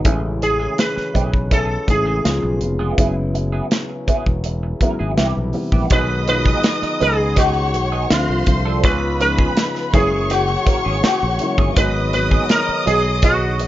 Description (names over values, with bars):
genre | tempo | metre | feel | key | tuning
lush 1970s-style soul | 82 BPM | 4/4 | straight | B major | A4 = 439 Hz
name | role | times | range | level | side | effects
dark grand piano | accompaniment | 0.0-13.7 s | C3 to F#4 | -25 LUFS | left 2 dB | none
dark French horn section | sustained chords | 0.0-13.7 s | C3 to E5 | -30 LUFS | left 1 dB | none
electric guitar through a small old amp | riff | 0.0-13.6 s | E3 to A#4 | -25 LUFS | right 5 dB | wah
fingered electric bass | bass | 0.0-13.7 s | E1 to D2 | -22 LUFS | equal | none
modern studio drum kit | drums | 0.0-13.7 s | hi-hat, kick drum, snare drum | -18 LUFS | equal | none
sitar | melody | 0.4-13.7 s | F4 to B4 | -20 LUFS | left 1 dB | none
rich studio violin section | second line | 5.9-13.7 s | B4 to D#6 | -24 LUFS | left 1 dB | none
room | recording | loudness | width
little or no reverb | nothing above 7.5 kHz | -15 LUFS | side -14 dB against mid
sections
0.0-5.9 A section; 5.9-13.7 B section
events
none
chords
0.1 Amaj7; 2.2 C#7; 3.0 F#9sus4; 5.2 Cmaj7; 5.9 B6; 8.1 Dm7; 8.8 C#7; 9.9 F#9; 11.8 G#m7